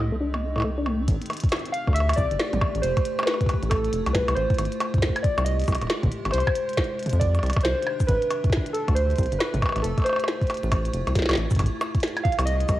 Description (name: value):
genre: IDM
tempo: 137 BPM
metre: 4/4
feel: swing 62% on 16ths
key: A minor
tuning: A4 = 440 Hz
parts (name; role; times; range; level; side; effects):
- warbly lo-fi synth keys; melody; 0.0-12.8 s; A4 to F5; -27 LUFS; right 1 dB; chorus, tape echo
- icy glass pad; sustained chords; 0.0-12.8 s; C3 to G4; -35 LUFS; left 1 dB; chorus, built-in reverb, cassette tape
- deep acid bass; arpeggios; 0.0-1.1 s; A2 to D4; -28 LUFS; left 1 dB; lush chorus, vintage 12-bit sampler grit, cassette tape, tape echo
- rubbery square bass; bass; 0.0-12.8 s; D#1 to F2; -25 LUFS; equal; none
- glitchy drum kit; drums; 0.3-12.8 s; hi-hat, percussion blips, shaker, snare drum, toms; -28 LUFS; equal; overdrive, studio reverb, cassette tape
- electronic kick drum; drums; 1.1-12.8 s; none; -23 LUFS; equal; overdrive, studio reverb, cassette tape
room: light reverb, digital ambience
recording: home recording on cassette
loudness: -21 LUFS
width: side -15 dB against mid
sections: 0.0-1.1 A section; 1.1-12.8 B section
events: none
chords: 0.0 Cmadd9; 1.1 Am7; 2.8 Fmaj7; 4.6 G#maj7; 6.3 Cmadd9; 8.1 Am7; 9.8 Fmaj7; 11.6 G#maj7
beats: 0.20 0.64 | 1.08 1.52 1.96 2.40 | 2.83 3.27 3.71 4.15 | 4.58 5.02 5.46 5.90 | 6.34 6.77 7.21 7.65 | 8.09 8.53 8.96 9.40 | 9.84 10.28 10.72 11.15 | 11.59 12.03 12.47